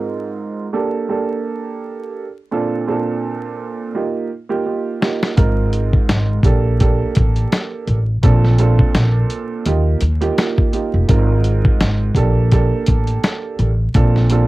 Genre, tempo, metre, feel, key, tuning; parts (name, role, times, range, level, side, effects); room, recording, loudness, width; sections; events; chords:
hip hop, boom-bap hip-hop; 84 BPM; 4/4; swing 57% on 16ths; G minor; A4 = 440 Hz
dark upright piano; accompaniment; 0.0-14.5 s; Ab2 to Bb4; -20 LUFS; right 4 dB; cassette tape, high-pass filter, low-pass filter
dusty soul sampler-style drum kit; drums; 5.0-14.5 s; hi-hat, kick drum, snare drum; -16 LUFS; equal; cassette tape
upright bass; bass; 5.4-14.5 s; F1 to Eb2; -15 LUFS; equal; tube saturation
little or no reverb; home recording on cassette, vinyl crackle; -14 LUFS; side -18 dB against mid
0.0-5.4 A section; 5.4-14.5 B section
drum fill 3.9-5.4
0.0 Ab6; 0.7 Gmadd9/Bb; 2.5 Bbmaj7; 3.9 Ebadd9; 5.4 Ab6; 6.4 Gmadd9; 8.2 Bbmaj7; 9.7 Ebadd9; 11.1 Ab6; 12.2 Gmadd9; 13.9 Bbmaj7